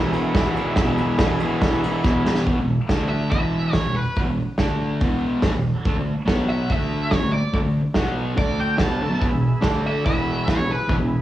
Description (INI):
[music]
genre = garage rock duo or trio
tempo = 142 BPM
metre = 4/4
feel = straight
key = E mixolydian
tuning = A4 = 437 Hz
[part]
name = combo organ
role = sustained chords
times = 0.0-2.4, 9.2-11.2 s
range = D4 to E5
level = -29 LUFS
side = right 1 dB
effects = none
[part]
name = fuzz guitar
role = riff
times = 0.0-11.2 s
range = E2 to D4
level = -21 LUFS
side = equal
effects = distortion
[part]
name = soft brush drum kit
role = drums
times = 0.1-11.0 s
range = hi-hat, kick drum, ride cymbal, snare drum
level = -23 LUFS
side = equal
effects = cassette tape
[part]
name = octave-fuzz lead guitar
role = melody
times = 3.1-10.9 s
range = B4 to A5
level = -27 LUFS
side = equal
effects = distortion, cassette tape
[sound]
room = light reverb, small room ambience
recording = home recording on cassette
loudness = -19 LUFS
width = side -14 dB against mid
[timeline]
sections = 0.0-2.5 A section; 2.5-11.2 B section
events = drum fill 2.0-2.5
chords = 0.0 E; 2.5 E5; 2.9 D5; 3.3 E5; 4.6 D5; 5.0 E5; 5.9 D5; 6.3 B5; 6.7 D5; 8.0 B5; 8.4 D5; 9.2 E; 9.6 D5; 10.1 E